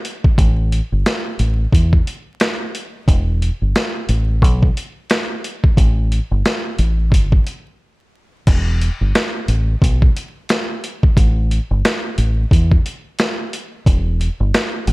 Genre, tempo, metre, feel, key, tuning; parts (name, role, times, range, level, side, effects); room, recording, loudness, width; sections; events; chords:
hip hop, boom-bap hip-hop; 89 BPM; 4/4; swing 60% on 16ths; A4 = 437 Hz
boom bap sampler-style drum kit; drums; 0.0-14.9 s; crash cymbal, hi-hat, kick drum, snare drum; -15 LUFS; equal
deep dub fingered electric bass; bass; 0.4-14.9 s; E1 to E2; -16 LUFS; equal
little or no reverb; vinyl crackle; -14 LUFS; side -22 dB against mid
0.0-8.5 A section; 8.5-14.9 B section
break 7.8-8.5